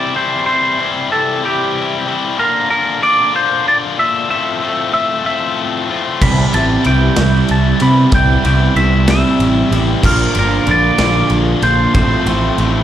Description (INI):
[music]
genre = indie rock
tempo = 63 BPM (dotted quarters)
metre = 6/8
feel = straight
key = C major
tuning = A4 = 440 Hz
[part]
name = twangy electric guitar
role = melody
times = 0.0-12.8 s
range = G4 to B5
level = -16 LUFS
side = equal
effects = phaser, slapback echo, tape echo
[part]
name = distorted electric guitar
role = riff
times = 0.0-12.8 s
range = A2 to F4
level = -19 LUFS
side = left 6 dB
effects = overdrive, slapback echo
[part]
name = electric guitar through a small old amp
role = riff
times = 6.2-12.8 s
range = A2 to F4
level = -17 LUFS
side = right 4 dB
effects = analog chorus, slapback echo
[part]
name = growling picked electric bass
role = bass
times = 6.2-12.8 s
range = G1 to C3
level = -14 LUFS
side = equal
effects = overdrive
[part]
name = big rock drum kit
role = drums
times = 6.2-12.7 s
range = crash cymbal, kick drum, ride cymbal, snare drum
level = -19 LUFS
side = equal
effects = none
[sound]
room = studio ambience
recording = live gig heard through the venue's PA, club reverb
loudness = -12 LUFS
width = side -11 dB against mid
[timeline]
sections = 0.0-12.8 A section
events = none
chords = 0.0 C; 2.4 Bb; 4.3 Fmaj7/A; 6.2 Cmaj7; 10.0 Bb; 12.0 Fmaj7/A